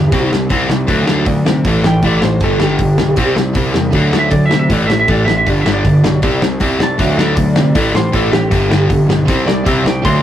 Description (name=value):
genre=punk rock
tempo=157 BPM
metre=4/4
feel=straight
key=unclear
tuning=A4 = 440 Hz
part: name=lightly driven lead guitar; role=melody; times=0.0-10.2 s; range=G4 to C6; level=-19 LUFS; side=right 1 dB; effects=none
part: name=crunchy overdriven guitar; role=riff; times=0.0-10.2 s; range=G2 to C4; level=-19 LUFS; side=right 2 dB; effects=none
part: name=sludgy distorted guitar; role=riff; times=0.0-10.2 s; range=G2 to D4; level=-15 LUFS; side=left 1 dB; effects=overdrive
part: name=fuzz picked electric bass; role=bass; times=0.0-10.2 s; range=G1 to C3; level=-18 LUFS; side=equal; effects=overdrive
part: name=loose indie drum kit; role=drums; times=0.1-10.1 s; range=hi-hat, kick drum, snare drum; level=-18 LUFS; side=equal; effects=none
room=moderate booth ambience, RT60 0.2 s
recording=rough rehearsal-room recording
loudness=-11 LUFS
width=side -11 dB against mid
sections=0.0-10.2 A section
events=lead electric guitar solo 0.0-10.2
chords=0.1 C5; 0.9 D; 1.6 A5; 2.4 G; 3.2 C; 3.9 D; 4.7 A5; 5.5 G; 6.2 C5; 7.0 D; 7.8 A5; 8.5 G; 9.3 C5